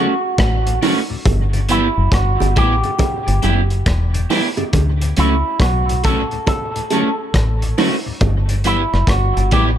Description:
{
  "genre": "roots reggae",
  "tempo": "69 BPM",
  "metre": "4/4",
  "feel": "swing 64% on 16ths",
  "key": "D major",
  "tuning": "A4 = 439 Hz",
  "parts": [
    { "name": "electric guitar with an envelope filter", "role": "melody", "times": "0.0-9.6 s", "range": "E4 to A4", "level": "-22 LUFS", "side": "right 1 dB", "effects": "dub echo" },
    { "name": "electric guitar at the edge of break-up", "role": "accompaniment", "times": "0.0-9.7 s", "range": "A3 to G4", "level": "-22 LUFS", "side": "right 3 dB", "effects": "lush chorus, dub echo" },
    { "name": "tonewheel organ", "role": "accompaniment", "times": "0.0-9.6 s", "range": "D2 to C#4", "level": "-26 LUFS", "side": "left 6 dB", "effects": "overdrive" },
    { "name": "deep dub fingered electric bass", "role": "bass", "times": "0.4-9.8 s", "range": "E1 to D2", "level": "-17 LUFS", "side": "equal", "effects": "none" },
    { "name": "crunchy breakbeat drum kit", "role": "drums", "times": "0.4-9.8 s", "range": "hi-hat, kick drum, rim click", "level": "-20 LUFS", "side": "equal", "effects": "dub echo" },
    { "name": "bongos", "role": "percussion", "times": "0.8-9.8 s", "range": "none", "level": "-24 LUFS", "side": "right 5 dB", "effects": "none" }
  ],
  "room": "little or no reverb",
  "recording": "none",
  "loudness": "-14 LUFS",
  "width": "side -10 dB against mid",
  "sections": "0.0-9.8 A section",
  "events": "none",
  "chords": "0.0 Dmaj7; 1.3 G6; 4.7 Dmaj7; 8.2 G6"
}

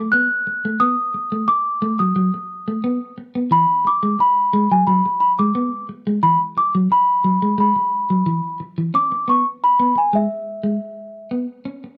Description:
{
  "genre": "funk",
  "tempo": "88 BPM",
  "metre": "4/4",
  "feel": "straight",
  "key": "unclear",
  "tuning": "A4 = 438 Hz",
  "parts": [
    { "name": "celesta", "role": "melody", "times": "0.0-11.3 s", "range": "E5 to F#6", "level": "-20 LUFS", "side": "equal", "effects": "none" },
    { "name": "clean electric guitar", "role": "riff", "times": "0.0-11.9 s", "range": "E3 to C#4", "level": "-23 LUFS", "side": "equal", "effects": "spring reverb" }
  ],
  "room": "little or no reverb",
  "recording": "dry, close 1970s-style studio recording",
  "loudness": "-19 LUFS",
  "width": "mono",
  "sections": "0.0-8.9 A section; 8.9-12.0 B section",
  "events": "none",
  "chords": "0.0 B7; 3.5 Eadd9; 8.9 C#m7"
}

